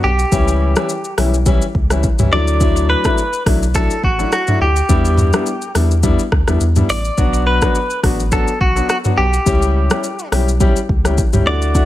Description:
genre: afrobeats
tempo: 105 BPM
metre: 4/4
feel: swing 55% on 16ths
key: unclear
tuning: A4 = 440 Hz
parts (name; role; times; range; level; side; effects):
- direct-recorded clean electric guitar; melody; 0.0-11.9 s; F#4 to D5; -19 LUFS; equal; ping-pong delay
- warm concert grand piano; accompaniment; 0.0-11.9 s; E3 to G4; -20 LUFS; left 3 dB; none
- saturated sub bass; bass; 0.0-11.9 s; A1 to E2; -16 LUFS; equal; none
- afro-pop drum kit; drums; 0.2-11.9 s; hi-hat, kick drum, rim click, shaker, toms; -17 LUFS; equal; none
room: digital ambience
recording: none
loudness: -13 LUFS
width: side -14 dB against mid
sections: 0.0-11.9 A section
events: none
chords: 0.3 C#dim; 2.3 Dadd9; 4.9 Em7; 7.2 Bm; 9.5 C#dim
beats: | 0.32 0.89 1.46 2.03 | 2.61 3.18 3.75 4.32 | 4.89 5.46 6.03 6.61 | 7.18 7.75 8.32 8.89 | 9.46 10.03 10.61 11.18 | 11.75

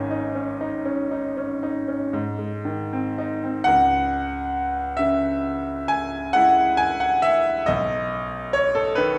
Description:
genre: classical, romantic nocturne for solo piano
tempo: 38-46 BPM (dotted quarters)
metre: 9/8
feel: rubato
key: C# minor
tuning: A4 = 441 Hz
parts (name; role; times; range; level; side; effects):
- bright grand piano; solo; 0.0-9.2 s; G#1 to G#5; -23 LUFS; equal; none
room: wet recital hall reverb, RT60 1.5 s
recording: heard from further back in the room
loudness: -23 LUFS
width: mono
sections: 0.0-3.7 A section; 3.7-9.2 B section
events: none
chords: 0.0 G#sus4; 2.1 G#; 3.7 C#m; 7.7 G#m/B (rootless)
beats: 0.61 2.13 | 3.67 4.99 6.35 | 7.68 8.98

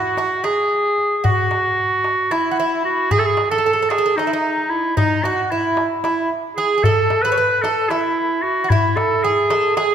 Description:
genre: Turkish makam ensemble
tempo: 225 BPM (eighths)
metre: 7/8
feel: straight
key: E makam rast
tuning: A4 = 442 Hz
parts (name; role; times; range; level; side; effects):
- bright clarinet; melody; 0.0-9.9 s; D#4 to B4; -17 LUFS; right 1 dB; none
- Greek bouzouki; second line; 0.0-9.9 s; D#4 to C#5; -23 LUFS; right 3 dB; none
- darbuka; percussion; 0.2-9.9 s; none; -23 LUFS; left 2 dB; none
room: wet concert hall reverb, RT60 1.9 s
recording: minimal, uncompressed stereo recording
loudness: -16 LUFS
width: side -8 dB against mid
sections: 0.0-9.9 A section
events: none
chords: none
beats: 0.17 0.44 0.71 0.97 | 1.24 1.51 1.77 2.04 2.31 2.57 2.84 | 3.11 3.37 3.64 3.91 4.17 4.44 4.71 | 4.97 5.24 5.51 5.77 6.04 6.31 6.57 | 6.84 7.11 7.37 7.64 7.91 8.17 8.44 | 8.71 8.97 9.24 9.50 9.77

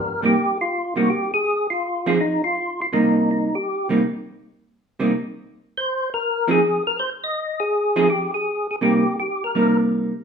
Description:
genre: jazz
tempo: 163 BPM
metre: 4/4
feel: swing 66% on 8ths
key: C minor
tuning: A4 = 440 Hz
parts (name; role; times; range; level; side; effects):
- percussive tonewheel organ; melody; 0.0-9.8 s; Eb4 to Eb5; -21 LUFS; left 1 dB; slow rotary speaker, chorus vibrato
- vintage hollow-body jazz guitar; accompaniment; 0.2-10.1 s; C3 to Ab4; -19 LUFS; right 2 dB; none
room: wet large studio reverb, RT60 0.9 s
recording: band playing live in one room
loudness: -19 LUFS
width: side -6 dB against mid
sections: 0.0-10.2 A section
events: none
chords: 0.0 Cm7; 1.4 Fm7; 2.9 Cm7; 5.9 Fm7; 8.8 Cm7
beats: 0.34 0.71 1.07 | 1.44 1.81 2.18 2.55 | 2.91 3.28 3.65 4.02 | 4.39 4.75 5.12 5.49 | 5.86 6.23 6.59 6.96 | 7.33 7.70 8.07 8.44 | 8.81 9.17 9.54 9.91

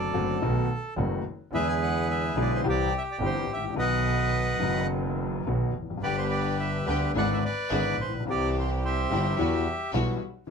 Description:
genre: tango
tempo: 108 BPM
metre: 4/4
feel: rubato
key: E minor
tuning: A4 = 438 Hz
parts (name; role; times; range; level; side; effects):
- bandoneon; melody; 0.0-9.9 s; G4 to G#5; -29 LUFS; right 1 dB; none
- warm concert grand piano; accompaniment; 0.0-10.5 s; F#1 to G4; -29 LUFS; left 4 dB; none
- clear double bass; bass; 0.0-10.5 s; F1 to E2; -30 LUFS; right 3 dB; none
- dark studio string section; stabs; 6.0-10.2 s; G3 to B4; -35 LUFS; left 1 dB; none
room: light reverb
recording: close, detailed microphones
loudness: -25 LUFS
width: side -6 dB against mid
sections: 0.0-10.5 A section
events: none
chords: 0.4 B7; 1.5 E7; 2.6 C; 3.8 B; 6.0 G; 7.2 E7/G#; 8.3 C; 9.4 Emadd9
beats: 0.42 0.97 | 1.53 2.08 2.64 3.20 | 3.76 4.32 4.89 5.46 | 6.03 6.59 7.15 7.71 | 8.27 8.83 9.38 9.94 | 10.49

